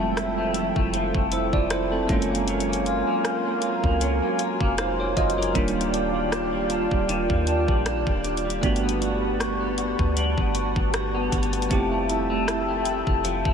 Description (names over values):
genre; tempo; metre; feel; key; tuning
contemporary R&B; 78 BPM; 4/4; swing 54% on 16ths; unclear; A4 = 439 Hz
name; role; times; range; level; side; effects
bell-like tine electric piano; accompaniment; 0.0-13.5 s; G3 to Eb5; -28 LUFS; right 4 dB; medium stereo tremolo
warm analog pad; sustained chords; 0.0-13.5 s; F3 to A5; -28 LUFS; equal; lush chorus
clean electric guitar; arpeggios; 0.0-13.5 s; Eb3 to F#4; -28 LUFS; left 1 dB; lush chorus, diffuse ambient delay
soft 808-style bass; bass; 0.0-13.5 s; Eb1 to Eb2; -29 LUFS; equal; none
trap drum kit; drums; 0.2-13.5 s; hi-hat, kick drum, rim click; -28 LUFS; equal; vintage 12-bit sampler grit
room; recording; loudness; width
moderate huge ambient reverb, RT60 8.4 s; dreamy mix soaked in reverb, lossy compression artefacts; -21 LUFS; side -7 dB against mid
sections
0.0-13.5 A section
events
none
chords
0.0 Fmaj9; 2.1 Gbmaj9; 5.6 Ebmaj9; 8.6 Gmaj9; 11.7 Fmaj9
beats
0.17 0.94 1.71 | 2.48 3.25 4.01 4.78 | 5.55 6.32 7.09 7.86 | 8.63 9.40 10.17 10.94 | 11.71 12.48 13.24